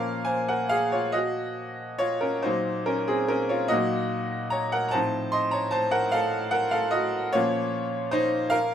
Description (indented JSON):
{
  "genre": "classical, romantic nocturne for solo piano",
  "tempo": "45-52 BPM (dotted quarters)",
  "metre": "6/8",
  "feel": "rubato",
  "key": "Bb minor",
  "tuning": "A4 = 440 Hz",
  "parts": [
    { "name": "bright upright piano", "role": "solo", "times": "0.0-8.7 s", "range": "A2 to C6", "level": "-23 LUFS", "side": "equal", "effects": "none" }
  ],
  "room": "light reverb",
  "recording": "minimal, uncompressed stereo recording",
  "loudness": "-23 LUFS",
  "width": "side -9 dB against mid",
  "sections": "0.0-8.7 A section",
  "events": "none",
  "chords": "0.0 Bbm; 4.9 F7/A; 7.4 Bbm"
}